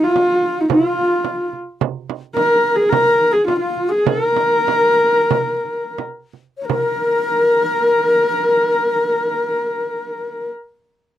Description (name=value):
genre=mongolian traditional, Mongolian folk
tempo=82-110 BPM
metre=4/4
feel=straight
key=unclear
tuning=A4 = 442 Hz
part: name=warm horsehead fiddle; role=melody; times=0.0-10.5 s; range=Eb4 to Bb4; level=-16 LUFS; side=equal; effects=none
part: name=breathy bright low xiao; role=second line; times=0.0-10.5 s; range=F4 to Db5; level=-21 LUFS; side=left 4 dB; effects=none
part: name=frame drum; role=percussion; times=0.2-7.0 s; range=none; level=-22 LUFS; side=right 10 dB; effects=none
room=little or no reverb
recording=dry, close 1970s-style studio recording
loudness=-14 LUFS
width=side -11 dB against mid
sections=0.0-6.7 A section; 6.7-11.2 B section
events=slowing down 1.8-6.7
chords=none